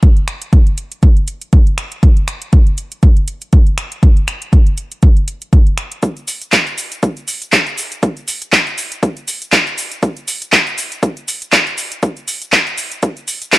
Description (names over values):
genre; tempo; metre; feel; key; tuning
house; 120 BPM; 4/4; swing 56% on 16ths; none; none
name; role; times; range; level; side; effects
electronic kick drum; drums; 0.0-13.6 s; none; -10 LUFS; equal; overdrive, high-pass filter on kick
house drum kit; drums; 0.0-13.6 s; cabasa, finger snaps, handclaps, hi-hat; -15 LUFS; equal; sidechain pumping on hats, high-pass filter on hats, high-pass filter on snare, sidechain pumping on perc, high-pass filter on perc
room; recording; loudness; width
little or no reverb; dark, warm production, lossy compression artefacts; -12 LUFS; side -19 dB against mid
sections
0.0-6.0 A section; 6.0-13.6 B section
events
build-up 6.0-13.6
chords
none